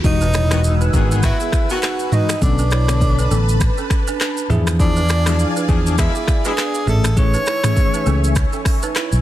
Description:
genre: afrobeats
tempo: 101 BPM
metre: 4/4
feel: swing 58% on 16ths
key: E major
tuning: A4 = 440 Hz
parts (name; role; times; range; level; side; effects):
- bell-like tine electric piano; accompaniment; 0.0-8.3 s; D3 to C#5; -24 LUFS; left 4 dB; medium stereo tremolo
- lush unison pad; sustained chords; 0.5-9.2 s; B4 to E6; -28 LUFS; equal; chorus, phaser
- fingered electric bass; bass; 0.0-9.2 s; E1 to E2; -17 LUFS; equal; none
- afro-pop drum kit; drums; 0.0-9.2 s; finger snaps, handclaps, hi-hat, kick drum, rim click, shaker, toms; -19 LUFS; equal; none
- riser and impact; sound effects; 0.0-2.4 s; none; -29 LUFS; equal; none
- breathy tenor saxophone; melody; 0.1-8.3 s; D4 to C#5; -24 LUFS; equal; tape echo
- balafon; riff; 0.2-9.1 s; B3 to E5; -28 LUFS; right 8 dB; tape echo
- warm horn section; second line; 0.5-6.5 s; B2 to G#4; -28 LUFS; left 4 dB; none
room: small room ambience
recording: dense, heavily limited modern master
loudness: -14 LUFS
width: side -13 dB against mid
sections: 0.0-9.2 A section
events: impact 0.0-2.4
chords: 0.0 Emaj9; 2.4 Bm9; 4.5 E7b9; 6.9 Amaj7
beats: | 0.04 0.64 1.23 1.82 | 2.42 3.01 3.61 4.20 | 4.79 5.39 5.98 6.58 | 7.17 7.77 8.36 8.95

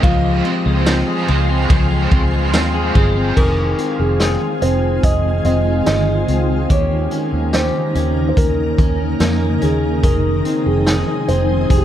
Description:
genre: dream pop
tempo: 72 BPM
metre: 4/4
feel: straight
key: F minor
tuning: A4 = 440 Hz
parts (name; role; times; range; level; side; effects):
- felt-muted upright piano; melody; 0.0-11.8 s; G4 to F5; -22 LUFS; right 2 dB; tape echo
- biting overdriven guitar; accompaniment; 0.0-3.4 s; Db3 to F4; -24 LUFS; right 3 dB; tremolo, ensemble chorus
- shimmering ambient pad; sustained chords; 0.0-11.8 s; C3 to C6; -22 LUFS; equal; chorus, built-in reverb
- clean electric guitar; arpeggios; 0.0-11.8 s; Eb3 to Ab4; -21 LUFS; left 2 dB; wide subtle chorus, tape echo
- vintage muted fingered electric bass; bass; 0.0-11.8 s; F1 to F2; -18 LUFS; equal; none
- raw garage drum kit; drums; 0.0-11.8 s; crash cymbal, hi-hat, kick drum, ride cymbal, snare drum, tambourine; -18 LUFS; equal; none
room: light reverb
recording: dark, warm production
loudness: -14 LUFS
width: side -11 dB against mid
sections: 0.0-3.4 A section; 3.4-11.8 B section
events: none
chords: 0.0 Dbmaj7; 3.4 Fm7; 6.7 Eb7; 10.0 Fm7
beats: | 0.04 0.87 1.70 2.54 | 3.37 4.20 5.04 5.87 | 6.70 7.54 8.37 9.20 | 10.04 10.87 11.70

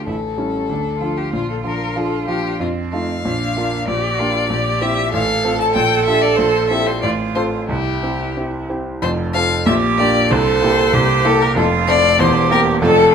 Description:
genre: quick classical-period movement for piano trio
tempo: 95 BPM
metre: 2/4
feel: straight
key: F major from 3.9 s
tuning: A4 = 439 Hz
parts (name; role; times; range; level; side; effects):
- rich violin; melody; 0.0-13.1 s; F4 to A5; -19 LUFS; left 7 dB; none
- rich cello; second line; 0.0-13.1 s; C4 to A4; -20 LUFS; right 7 dB; none
- clear concert grand piano; accompaniment; 0.0-13.1 s; E1 to A4; -18 LUFS; right 1 dB; none
room: moderate recital hall reverb, RT60 1.5 s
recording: close, detailed microphones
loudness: -15 LUFS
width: side -7 dB against mid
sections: 0.0-9.0 A section; 9.0-13.1 B section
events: none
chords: 0.1 A7; 0.7 Dm; 1.3 Bb; 2.6 F7; 3.3 Bb; 3.9 Gm/Bb; 4.5 C7/Bb; 5.1 F/A; 5.8 Gm7/Bb; 6.4 C7/Bb; 7.0 F/A; 7.7 C; 9.0 F; 9.7 Gm/Bb; 10.3 C7; 11.6 F; 12.2 C7/E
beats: | 0.07 0.70 | 1.33 1.97 | 2.61 3.25 | 3.88 4.51 | 5.13 5.76 | 6.38 7.03 | 7.69 8.36 | 9.02 9.66 | 10.30 10.93 | 11.56 12.19 | 12.82

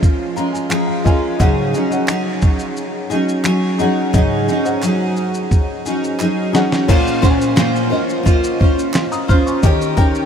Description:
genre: acoustic pop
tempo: 87 BPM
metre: 4/4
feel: straight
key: Bb minor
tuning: A4 = 440 Hz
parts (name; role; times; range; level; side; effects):
- felt-muted upright piano; accompaniment; 0.0-10.3 s; Db4 to F6; -23 LUFS; left 4 dB; wide subtle chorus
- picked steel-string acoustic guitar; accompaniment; 0.0-10.3 s; Ab2 to C5; -17 LUFS; equal; double-tracked left and right
- dusty soul sampler-style drum kit; drums; 0.0-10.3 s; crash cymbal, finger snaps, kick drum, shaker, snare drum; -17 LUFS; equal; none
- group handclap; percussion; 0.7-9.1 s; none; barely audible; none; none
room: moderate huge ambient reverb, RT60 7.2 s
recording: dreamy mix soaked in reverb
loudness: -14 LUFS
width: side -8 dB against mid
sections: 0.0-6.9 A section; 6.9-10.3 B section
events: felt piano fill 0.0-1.4; drum fill 4.1-6.9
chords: 0.0 Bbm7; 1.4 Ab7sus4; 6.9 Bbmadd9; 9.6 Eb7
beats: 0.02 0.71 | 1.40 2.08 2.77 3.46 | 4.14 4.83 5.51 6.20 | 6.89 7.58 8.26 8.95 | 9.63

